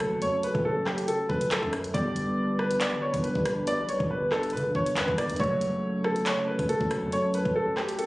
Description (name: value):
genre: hip hop, drill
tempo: 139 BPM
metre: 4/4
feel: half-time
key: F# phrygian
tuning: A4 = 440 Hz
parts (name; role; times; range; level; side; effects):
- clear upright piano; melody; 0.0-8.1 s; G4 to D5; -28 LUFS; equal; low-pass filter
- Celtic harp; accompaniment; 0.0-8.1 s; C#3 to G4; -33 LUFS; equal; low-pass filter
- dark analog pad; sustained chords; 0.0-8.1 s; F#3 to B4; -34 LUFS; equal; chorus
- hard-hitting 808-style bass; bass; 0.0-7.1 s; F#1 to D3; -35 LUFS; equal; none
- drill drum kit; drums; 0.0-8.1 s; handclaps, hi-hat, kick drum, rim click; -32 LUFS; equal; overdrive, vintage 12-bit sampler grit
room: light reverb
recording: recorded on a phone in the room, club reverb, compression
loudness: -25 LUFS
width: side -20 dB against mid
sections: 0.0-8.1 A section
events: none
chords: 0.0 F#m; 1.9 G; 5.4 F#m